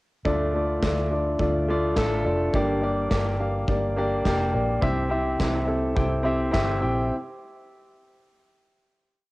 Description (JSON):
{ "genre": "piano-driven pop", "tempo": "105 BPM", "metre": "4/4", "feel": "swing 56% on 16ths", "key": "D minor", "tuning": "A4 = 437 Hz", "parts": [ { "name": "warm grand piano", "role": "accompaniment", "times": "0.2-7.1 s", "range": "G2 to Bb5", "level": "-24 LUFS", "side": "equal", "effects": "cassette tape" }, { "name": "vintage muted fingered electric bass", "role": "bass", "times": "0.3-7.1 s", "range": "F1 to D2", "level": "-28 LUFS", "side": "equal", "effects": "none" }, { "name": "loose indie drum kit", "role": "drums", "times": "0.3-6.7 s", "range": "handclaps, kick drum, snare drum", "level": "-30 LUFS", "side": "equal", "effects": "cassette tape" } ], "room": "moderate spring reverb, RT60 2.6 s", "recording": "home recording on cassette", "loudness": "-22 LUFS", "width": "side -20 dB against mid", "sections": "0.3-9.3 verse", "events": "grand piano fill 3.7-4.8", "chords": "0.3 Dm; 2.5 Gm; 4.8 C" }